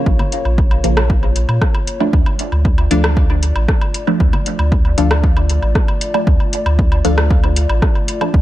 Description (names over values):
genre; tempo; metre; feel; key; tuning
dub techno; 116 BPM; 4/4; straight; D harmonic minor; A4 = 439 Hz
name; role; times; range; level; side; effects
dark analog pad; sustained chords; 0.0-8.4 s; A3 to D5; -26 LUFS; left 3 dB; chorus, sidechain pumping
filtered dub chord stab; stabs; 0.0-8.4 s; Db3 to D4; -21 LUFS; equal; phaser, dub echo
pure sine sub bass; bass; 0.1-8.4 s; A1 to Bb2; -15 LUFS; equal; sidechain pumping
electronic kick drum; drums; 0.1-8.4 s; none; -15 LUFS; equal; overdrive
congas and woodblock; percussion; 0.2-8.3 s; none; -27 LUFS; equal; overdrive, sidechain pumping on perc, dub echo
soft vintage rhythm box; drums; 0.3-8.2 s; hi-hat, rim click; -22 LUFS; equal; none
wavetable chord stab; riff; 2.9-7.2 s; D4 to F5; -28 LUFS; left 3 dB; sidechain pumping, dub echo
room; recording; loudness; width
little or no reverb; dark, warm production; -12 LUFS; side -14 dB against mid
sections
0.0-8.4 A section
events
filter sweep on synth stab 0.0-8.4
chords
0.0 Bbm; 2.1 Dm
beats
| 0.06 0.58 1.10 1.62 | 2.13 2.65 3.17 3.69 | 4.20 4.72 5.24 5.75 | 6.27 6.79 7.30 7.82 | 8.34